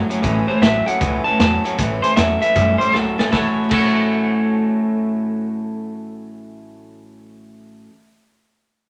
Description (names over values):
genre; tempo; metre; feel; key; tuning
rockabilly; 156 BPM; 4/4; swing 65% on 8ths; A major; A4 = 439 Hz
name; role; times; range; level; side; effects
picked steel-string acoustic guitar; accompaniment; 0.0-8.0 s; A2 to A4; -25 LUFS; equal; none
twangy electric guitar; riff; 0.0-7.9 s; A2 to C#5; -25 LUFS; equal; spring reverb
upright bass; bass; 0.0-7.9 s; A1 to F#2; -27 LUFS; equal; none
vintage drum kit; drums; 0.1-3.9 s; crash cymbal, hi-hat, kick drum, snare drum; -23 LUFS; equal; none
clean electric guitar; melody; 0.5-7.9 s; A4 to A5; -22 LUFS; equal; none
room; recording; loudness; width
wet studio reverb, RT60 0.9 s; none; -18 LUFS; mono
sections
0.0-1.8 A section; 1.8-3.3 B section; 3.3-6.4 C section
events
drum fill 2.9-3.3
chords
0.0 A6